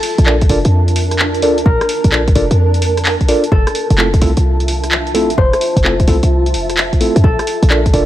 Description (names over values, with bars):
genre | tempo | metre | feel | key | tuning
UK garage, two-step garage | 129 BPM | 4/4 | swing 66% on 16ths | F major | A4 = 439 Hz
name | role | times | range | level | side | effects
concert harp | melody | 0.0-8.1 s | A4 to C5 | -22 LUFS | left 2 dB | digital delay
punchy analog drum machine | drums | 0.0-8.1 s | handclaps, hi-hat, rim click | -19 LUFS | equal | none
granular cloud pad | texture | 0.0-8.1 s | D4 to A5 | -21 LUFS | right 1 dB | built-in reverb, sidechain pumping
short 808-style bass | bass | 0.2-8.1 s | F1 to F2 | -14 LUFS | equal | none
mellow tine electric piano | stabs | 0.3-8.0 s | A3 to D5 | -18 LUFS | equal | medium stereo tremolo, digital delay
electronic kick drum | drums | 0.4-7.9 s | none | -14 LUFS | equal | none
room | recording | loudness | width
light reverb | none | -11 LUFS | side -13 dB against mid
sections
0.0-8.1 A section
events
none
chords
0.0 Bbmaj7; 3.5 Fmaj7; 7.2 Bbmaj7